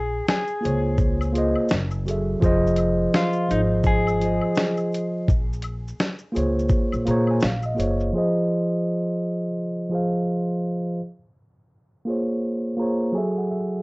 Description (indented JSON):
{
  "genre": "lo-fi hip hop",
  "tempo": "84 BPM",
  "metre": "4/4",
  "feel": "swing 60% on 16ths",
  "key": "Bb minor",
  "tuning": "A4 = 440 Hz",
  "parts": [
    { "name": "clean electric guitar", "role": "melody", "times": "0.0-7.4 s", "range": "Eb4 to Ab4", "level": "-27 LUFS", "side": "left 1 dB", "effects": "spring reverb" },
    { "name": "upright bass", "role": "bass", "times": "0.0-8.1 s", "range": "F1 to Bb2", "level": "-26 LUFS", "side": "equal", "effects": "none" },
    { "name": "dusty soul sampler-style drum kit", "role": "drums", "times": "0.3-8.1 s", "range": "hi-hat, kick drum, shaker, snare drum", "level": "-22 LUFS", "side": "equal", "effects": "none" },
    { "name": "tube shaker and woodblock", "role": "percussion", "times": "0.3-8.0 s", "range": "none", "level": "-40 LUFS", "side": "left 4 dB", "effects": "none" },
    { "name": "mellow tine electric piano", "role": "accompaniment", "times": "0.6-13.8 s", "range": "F3 to Bb5", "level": "-22 LUFS", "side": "equal", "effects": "cassette tape" }
  ],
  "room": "wet small room reverb, RT60 0.5 s",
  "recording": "worn, warbling old tape, cassette tape, warbly pitch drift, low-pass filter, nothing above 8.0 kHz",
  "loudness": "-20 LUFS",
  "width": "side -26 dB against mid",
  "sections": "0.0-8.1 A section; 8.1-13.8 B section",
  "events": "tine electric piano fill 6.7-8.1, 12.4-13.8",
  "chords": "0.0 Bbm9; 1.7 Gbm7; 2.4 Fm7; 5.3 Bbm9; 7.4 Bbm7; 8.1 Fm7; 11.0 Bbm9; 13.1 Gbm7",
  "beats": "0.28 0.99 1.71 | 2.42 3.14 3.85 4.57 | 5.28 6.00 6.71 7.42 | 8.14 8.85 9.57 10.28 | 10.99 11.71 12.42 13.14"
}